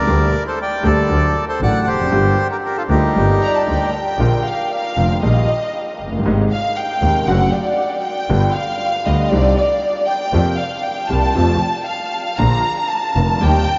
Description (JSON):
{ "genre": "tango", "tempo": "117 BPM", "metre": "4/4", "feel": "rubato", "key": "G minor, Bb major from 4.2 s", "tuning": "A4 = 440 Hz", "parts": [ { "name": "bandoneon", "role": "melody", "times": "0.0-3.9 s", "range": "Eb4 to G5", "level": "-23 LUFS", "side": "equal", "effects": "none" }, { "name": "clear concert grand piano", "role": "accompaniment", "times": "0.0-13.6 s", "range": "Eb1 to G4", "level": "-23 LUFS", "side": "equal", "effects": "subtle chorus" }, { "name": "clear double bass", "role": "bass", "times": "0.0-13.6 s", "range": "F1 to F2", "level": "-20 LUFS", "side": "equal", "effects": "none" }, { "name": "dark studio violin section", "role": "second line", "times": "3.4-13.8 s", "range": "D5 to Bb5", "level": "-21 LUFS", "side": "equal", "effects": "analog delay" } ], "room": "wet huge ambient reverb, RT60 8.8 s", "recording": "dreamy mix soaked in reverb, nothing above 7.6 kHz", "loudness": "-17 LUFS", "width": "mono", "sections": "0.0-4.2 A section; 4.2-13.8 B section", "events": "violin section solo 4.2-13.8", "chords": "0.1 Gm/D; 1.1 D; 2.1 Gm7; 4.2 Bb; 5.2 Ebadd9/Bb; 6.3 Abadd9; 7.3 D/F#; 8.3 G7; 9.3 Cmadd9; 10.3 Fsus4; 11.4 F; 12.4 Bb", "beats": "| 0.08 0.59 1.10 1.61 | 2.13 2.64 3.16 3.68 | 4.20 4.72 5.23 5.75 | 6.26 6.77 7.28 7.79 | 8.30 8.80 9.31 9.82 | 10.34 10.85 11.36 11.88 | 12.40 12.91 13.43" }